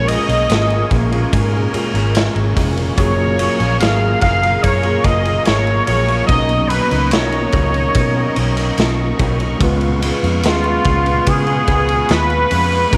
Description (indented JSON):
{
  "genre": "indie pop, bedroom pop",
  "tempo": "72 BPM",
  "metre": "4/4",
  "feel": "straight",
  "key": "unclear",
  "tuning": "A4 = 440 Hz",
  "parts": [
    { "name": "warm trumpet", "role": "melody", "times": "0.0-13.0 s", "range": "E#4 to E#5", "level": "-20 LUFS", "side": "equal", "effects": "analog chorus, slapback echo" },
    { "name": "electric guitar through a small old amp", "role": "accompaniment", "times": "0.0-13.0 s", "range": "A#2 to G#4", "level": "-25 LUFS", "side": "equal", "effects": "lush chorus, vibrato effect" },
    { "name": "mellow tine electric piano", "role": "accompaniment", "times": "0.0-13.0 s", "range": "F#3 to A#5", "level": "-28 LUFS", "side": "equal", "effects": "none" },
    { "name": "warm analog pad", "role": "sustained chords", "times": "0.0-13.0 s", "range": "G#4 to C#6", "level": "-29 LUFS", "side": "equal", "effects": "chorus" },
    { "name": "vintage muted fingered electric bass", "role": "bass", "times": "0.0-13.0 s", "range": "E#1 to C#3", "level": "-21 LUFS", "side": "equal", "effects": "none" },
    { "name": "raw garage drum kit", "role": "drums", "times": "0.1-13.0 s", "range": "hi-hat, kick drum, ride cymbal, snare drum", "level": "-22 LUFS", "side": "equal", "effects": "none" }
  ],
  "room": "light reverb, studio ambience",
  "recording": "none",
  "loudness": "-16 LUFS",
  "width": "mono",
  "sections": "0.0-13.0 A section",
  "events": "none",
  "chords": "0.0 A#m7; 3.0 F#maj9; 6.3 Bmaj9; 9.6 C#7"
}